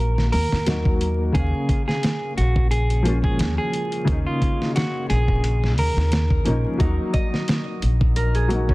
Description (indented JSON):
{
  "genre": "trip hop",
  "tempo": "88 BPM",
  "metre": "4/4",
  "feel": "swing 55% on 16ths",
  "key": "Eb minor",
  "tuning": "A4 = 440 Hz",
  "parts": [
    { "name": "clean electric guitar", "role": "melody", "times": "0.0-6.7 s", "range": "F4 to Bb4", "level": "-28 LUFS", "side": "right 1 dB", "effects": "vintage 12-bit sampler grit, tape echo" },
    { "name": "felt-muted upright piano", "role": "accompaniment", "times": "0.0-8.7 s", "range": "Db3 to F5", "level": "-26 LUFS", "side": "left 1 dB", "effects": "tremolo, low-pass filter, tape echo" },
    { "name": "upright bass", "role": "bass", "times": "0.0-8.7 s", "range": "Bb1 to Eb2", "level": "-21 LUFS", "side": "equal", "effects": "none" },
    { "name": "dusty soul sampler-style drum kit", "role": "drums", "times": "0.2-8.7 s", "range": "hi-hat, kick drum, snare drum", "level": "-23 LUFS", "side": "equal", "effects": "none" },
    { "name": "Celtic harp", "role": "arpeggios", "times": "6.8-8.7 s", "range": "Db4 to Eb5", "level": "-29 LUFS", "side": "equal", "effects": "tape echo" }
  ],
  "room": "small room ambience",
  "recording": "dense, heavily limited modern master, vinyl crackle",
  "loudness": "-19 LUFS",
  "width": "side -21 dB against mid",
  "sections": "0.0-8.7 A section",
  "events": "filter sweep on felt piano 0.0-8.7",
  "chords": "0.0 Ebm; 1.3 Bbm; 6.8 Ebm",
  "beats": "0.67 | 1.35 2.03 2.71 3.39 | 4.08 4.76 5.44 6.12 | 6.80 7.48 8.17"
}